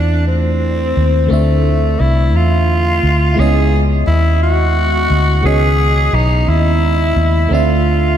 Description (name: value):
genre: slow six-eight R&B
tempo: 58 BPM (dotted quarters)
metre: 6/8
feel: straight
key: unclear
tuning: A4 = 440 Hz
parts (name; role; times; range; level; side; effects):
- growling tenor saxophone; melody; 0.0-8.2 s; A3 to G#4; -17 LUFS; equal; ping-pong delay
- FM electric piano; accompaniment; 0.0-8.2 s; C#3 to E5; -19 LUFS; equal; chorus, phaser
- vintage muted fingered electric bass; bass; 0.0-8.2 s; B1 to E2; -13 LUFS; equal; none
room: moderate lush hall reverb, RT60 3.1 s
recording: dreamy mix soaked in reverb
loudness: -11 LUFS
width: side -10 dB against mid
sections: 0.0-8.2 A section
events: none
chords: 0.0 Dm9; 3.4 C#m9; 7.5 Dm9